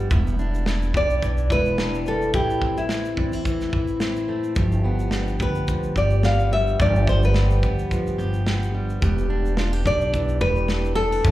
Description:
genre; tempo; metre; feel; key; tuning
acoustic pop; 108 BPM; 4/4; swing 55% on 16ths; unclear; A4 = 441 Hz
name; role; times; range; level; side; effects
fingerpicked plugged-in steel-string acoustic guitar; accompaniment; 0.0-11.3 s; E2 to G4; -28 LUFS; left 1 dB; none
fingerpicked steel-string acoustic guitar; arpeggios; 0.0-11.3 s; E3 to G4; -33 LUFS; right 4 dB; none
upright bass; bass; 0.0-11.3 s; E1 to E2; -23 LUFS; equal; none
modern studio drum kit; drums; 0.1-11.3 s; kick drum, shaker, snare drum; -26 LUFS; equal; none
nylon-string guitar; melody; 1.0-11.3 s; E4 to F5; -24 LUFS; equal; none
room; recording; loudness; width
light reverb, studio reverb; live gig heard through the venue's PA, club reverb; -19 LUFS; side -15 dB against mid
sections
0.0-11.3 A section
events
none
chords
0.1 Em7; 2.3 Am; 4.6 G7; 9.0 Em7

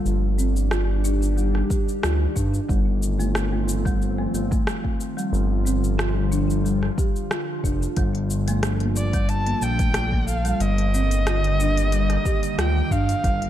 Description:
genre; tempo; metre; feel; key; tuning
organic downtempo; 91 BPM; 4/4; swing 54% on 16ths; unclear; A4 = 441 Hz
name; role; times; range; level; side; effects
warbly tape-like pad; sustained chords; 0.0-13.5 s; D3 to A4; -29 LUFS; equal; chorus, built-in reverb, phaser, sidechain pumping
folk marimba with soft mallets; arpeggios; 0.0-13.4 s; G3 to G4; -28 LUFS; equal; low-pass filter, digital delay
smooth synth bass; bass; 0.1-13.5 s; F1 to G2; -23 LUFS; equal; sidechain pumping
afro-pop drum kit; drums; 0.1-13.5 s; hi-hat, rim click, shaker; -31 LUFS; left 1 dB; none
electronic kick drum; drums; 1.7-13.4 s; none; -24 LUFS; equal; none
clear kamancheh; melody; 9.0-13.5 s; D5 to A5; -26 LUFS; right 1 dB; digital delay
room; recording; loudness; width
light reverb, digital ambience; dark, warm production; -20 LUFS; side -11 dB against mid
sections
0.0-13.5 A section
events
filter sweep on marimba 0.0-13.5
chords
0.1 Ebmaj7/G; 2.7 F7/G; 5.3 G5; 8.0 Bbmaj7/G; 10.6 Ebmaj7/G

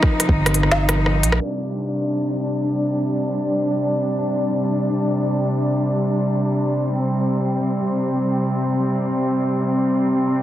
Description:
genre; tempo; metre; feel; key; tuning
half-time drum and bass; free time; none; none; C minor; A4 = 442 Hz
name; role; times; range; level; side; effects
clear chamber cello section; sustained chords; 0.0-10.4 s; C3 to Eb4; -19 LUFS; equal; sidechain pumping, low-pass filter
organic electronic drum kit; drums; 0.0-1.5 s; crash cymbal, hi-hat, rim click, snare drum; -21 LUFS; equal; none
growling 808-style bass; bass; 0.3-1.4 s; G1 to Bb1; -19 LUFS; equal; none
room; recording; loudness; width
moderate huge ambient reverb, RT60 7.3 s; heavily compressed radio sound, multiband compression, low-pass filter; -18 LUFS; side -12 dB against mid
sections
0.0-1.4 A section; 1.4-10.4 B section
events
filter sweep on cello section 1.4-10.4; filter sweep 1.4-10.4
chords
0.0 C5

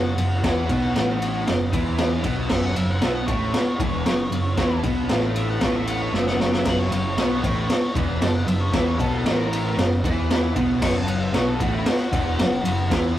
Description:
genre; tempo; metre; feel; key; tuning
garage rock duo or trio; 116 BPM; 4/4; straight; unclear; A4 = 440 Hz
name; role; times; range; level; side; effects
octave-fuzz lead guitar; melody; 0.0-12.9 s; E4 to C#6; -30 LUFS; left 2 dB; distortion
fuzz guitar; riff; 0.0-13.2 s; E2 to E4; -26 LUFS; right 1 dB; distortion
overdriven picked electric bass; bass; 0.0-13.2 s; E1 to E2; -26 LUFS; equal; none
raw garage drum kit; drums; 0.2-13.0 s; crash cymbal, kick drum, ride cymbal, snare drum; -22 LUFS; equal; none
room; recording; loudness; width
light reverb; rough rehearsal-room recording, warm saturation; -19 LUFS; side -12 dB against mid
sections
0.0-13.2 A section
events
lead electric guitar solo 0.0-13.2; drum fill 6.1-6.7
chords
0.0 Esus24

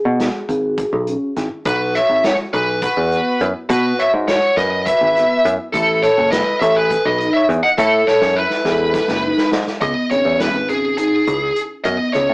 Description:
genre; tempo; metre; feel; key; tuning
progressive instrumental, band music in an uneven meter; 206 BPM (eighths); 7/8; straight; C# minor; A4 = 440 Hz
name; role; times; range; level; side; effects
picked electric bass; bass; 0.1-12.3 s; F#1 to B2; -20 LUFS; equal; none
vibraphone with soft mallets; arpeggios; 0.2-12.3 s; B3 to A4; -22 LUFS; equal; digital delay
unplugged drum kit; drums; 0.2-12.3 s; hi-hat, kick drum, snare drum; -25 LUFS; equal; none
tube shaker; percussion; 0.8-9.2 s; none; -49 LUFS; right 1 dB; none
high-gain lead guitar; melody; 1.7-12.3 s; G#4 to F#5; -16 LUFS; equal; distortion
warm flugelhorn; second line; 1.7-9.5 s; E4 to D#5; -22 LUFS; equal; none
room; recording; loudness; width
moderate studio reverb, RT60 0.5 s; rough rehearsal-room recording, tube saturation, small speaker sound; -14 LUFS; side -31 dB against mid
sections
0.0-9.8 A section; 9.8-12.3 B section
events
drum fill 8.1-9.8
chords
0.0 C#5; 1.7 Bsus4; 5.7 Asus2; 9.8 C#m

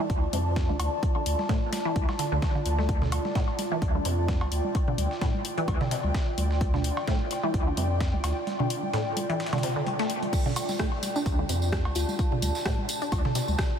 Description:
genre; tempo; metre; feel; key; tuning
minimal techno; 129 BPM; 4/4; swing 55% on 16ths; D minor; A4 = 439 Hz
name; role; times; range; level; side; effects
resonant blip pluck; riff; 0.0-13.4 s; A2 to D4; -32 LUFS; equal; phaser, sidechain pumping, diffuse ambient delay
airy breathy pad; texture; 0.0-13.8 s; F4 to A5; -32 LUFS; equal; chorus, sidechain pumping
saturated sub bass; bass; 0.1-8.3, 11.3-13.6 s; C2 to F2; -28 LUFS; equal; tube saturation, sidechain pumping
dusty soul sampler-style drum kit; drums; 0.1-13.7 s; hi-hat, snare drum; -42 LUFS; left 1 dB; high-pass filter on snare, studio reverb, high-pass filter on hats
electronic kick drum; drums; 0.1-13.7 s; none; -27 LUFS; equal; overdrive, studio reverb
house drum kit; drums; 0.3-13.7 s; crash cymbal, hi-hat, rim click; -36 LUFS; left 2 dB; overdrive, studio reverb
electronic congas, cowbell and toms; percussion; 0.3-13.6 s; none; -35 LUFS; right 2 dB; studio reverb, ping-pong delay
tambourine; percussion; 10.3-13.7 s; none; -38 LUFS; right 4 dB; none
bell-like FM electric piano; melody; 12.0-12.4 s; F4; -38 LUFS; left 5 dB; chorus, ping-pong delay
room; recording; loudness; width
moderate huge ambient reverb, RT60 7.9 s; dreamy mix soaked in reverb; -25 LUFS; side -8 dB against mid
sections
0.0-13.8 A section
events
none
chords
0.0 Dm

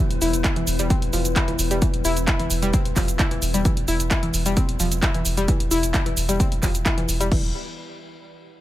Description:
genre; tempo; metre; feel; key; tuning
driving peak-time techno; 131 BPM; 4/4; straight; unclear; A4 = 440 Hz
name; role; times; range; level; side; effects
analog pluck; riff; 0.0-7.5 s; E3 to E4; -26 LUFS; left 1 dB; chorus, sidechain pumping, tape echo
metallic inharmonic drone; drone; 0.0-7.4 s; E3 to B3; -32 LUFS; left 5 dB; chorus, built-in reverb, sidechain pumping
saturated sub bass; bass; 0.1-7.5 s; E1; -26 LUFS; equal; sidechain pumping, low-pass filter
punchy analog drum machine; drums; 0.1-7.4 s; crash cymbal, handclaps, hi-hat, shaker; -27 LUFS; right 1 dB; none
electronic kick drum; drums; 0.4-7.4 s; none; -22 LUFS; equal; overdrive
room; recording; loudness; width
digital ambience; none; -19 LUFS; side -14 dB against mid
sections
0.0-7.3 A section; 7.3-8.6 B section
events
drop 0.0-7.3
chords
0.0 E5; 7.3 N.C.

